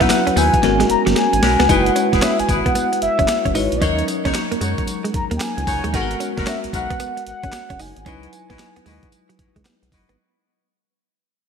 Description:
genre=R&B, new jack swing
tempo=113 BPM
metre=4/4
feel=swing 64% on 16ths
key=G# minor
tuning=A4 = 440 Hz
part: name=mellow horn-like synth lead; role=melody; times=0.0-9.7 s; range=C#5 to A#5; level=-21 LUFS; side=left 1 dB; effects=chorus
part: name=bell-like tine electric piano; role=accompaniment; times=0.0-10.2 s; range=F#3 to B4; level=-22 LUFS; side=left 1 dB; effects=medium stereo tremolo
part: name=direct-recorded clean electric guitar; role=riff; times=0.0-10.2 s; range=F#3 to D#4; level=-26 LUFS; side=right 3 dB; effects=wide subtle chorus
part: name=warm horn section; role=stabs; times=0.0-10.1 s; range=B3 to D#5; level=-26 LUFS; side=left 2 dB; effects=none
part: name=round analog bass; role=bass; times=0.0-10.2 s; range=E1 to F#2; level=-24 LUFS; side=equal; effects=none
part: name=breakbeat sampler-style drum kit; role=drums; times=0.0-10.2 s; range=handclaps, hi-hat, kick drum, snare drum, tambourine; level=-23 LUFS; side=equal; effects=none
room=moderate lush hall reverb, RT60 2.3 s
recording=bright 1980s-style digital production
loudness=-16 LUFS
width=side -6 dB against mid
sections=0.0-1.7 A section; 1.7-10.2 B section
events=drum fill 0.6-1.7; fade-out 1.7-10.2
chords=0.0 C#m11; 0.6 G#m11; 1.7 F#9sus4; 3.8 D#m7; 5.9 G#m9; 8.1 C#m11

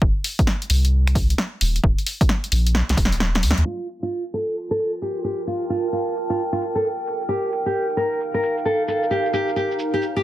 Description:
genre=UK garage, two-step garage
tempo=132 BPM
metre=4/4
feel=swing 64% on 16ths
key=G minor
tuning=A4 = 440 Hz
part: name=soft dub sub bass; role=bass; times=0.0-3.6 s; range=Eb1 to Eb2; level=-19 LUFS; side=equal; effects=sidechain pumping
part: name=electronic kick drum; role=drums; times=0.0-3.1 s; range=none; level=-19 LUFS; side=equal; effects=none
part: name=punchy analog drum machine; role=drums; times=0.2-10.2 s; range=finger snaps, hi-hat, shaker, snare drum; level=-24 LUFS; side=equal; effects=low-pass filter on hats, low-pass filter on snare, low-pass filter on perc
part: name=nylon-string guitar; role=melody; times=3.7-10.2 s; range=F4 to Bb4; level=-23 LUFS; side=equal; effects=tape echo
part: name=warbly tape-like pad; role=texture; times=4.4-10.2 s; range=Eb4 to A5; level=-25 LUFS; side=right 2 dB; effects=chorus, built-in reverb, sidechain pumping
room=moderate studio reverb, RT60 0.6 s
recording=dense, heavily limited modern master, low-pass filter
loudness=-19 LUFS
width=side -14 dB against mid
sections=0.0-3.7 A section; 3.7-10.2 B section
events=drum fill 2.7-3.7; kick drops out 3.2-3.7; band accent 3.5; filter sweep 3.7-10.2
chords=0.0 N.C.; 1.6 Eb5; 3.7 Gm9; 7.1 F9sus4; 8.9 Eb6

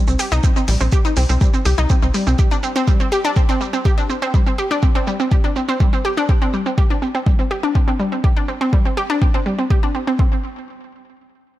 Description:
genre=melodic techno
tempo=123 BPM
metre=4/4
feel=straight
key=unclear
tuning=A4 = 438 Hz
part: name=analog pluck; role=arpeggios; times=0.0-10.4 s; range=G3 to G4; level=-20 LUFS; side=equal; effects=chorus, sidechain pumping, digital delay
part: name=tight sequencer bass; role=bass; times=0.1-2.3 s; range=Bb1 to C2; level=-16 LUFS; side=equal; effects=sidechain pumping
part: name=electronic shaker and hi-hat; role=drums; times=0.1-10.2 s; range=none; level=-31 LUFS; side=right 3 dB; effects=sidechain pumping on perc, low-pass filter on perc, sidechain pumping on hats, low-pass filter on hats, low-pass filter on room
part: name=electronic kick drum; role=drums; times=0.4-10.3 s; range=none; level=-16 LUFS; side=equal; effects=none
room=little or no reverb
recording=none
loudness=-15 LUFS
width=side -14 dB against mid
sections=0.0-10.2 A section; 10.2-11.6 B section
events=none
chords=0.0 C5; 2.4 Gsus4; 10.2 N.C.

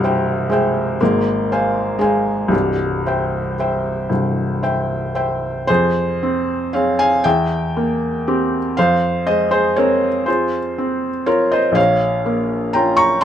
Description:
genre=classical, romantic nocturne for solo piano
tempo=39 BPM (dotted quarters)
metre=6/8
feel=uneven beats, rubato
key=F minor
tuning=A4 = 440 Hz
part: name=felt-muted upright piano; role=solo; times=0.0-13.2 s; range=C1 to Db6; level=-15 LUFS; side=equal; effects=none
room=little or no reverb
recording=close, detailed microphones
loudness=-15 LUFS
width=side -10 dB against mid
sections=0.0-5.7 A section; 5.7-13.2 B section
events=none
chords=0.0 C; 1.0 Fm/Ab; 2.5 C; 5.7 Fm; 7.2 C7/E; 8.8 Fm; 11.8 Bbm

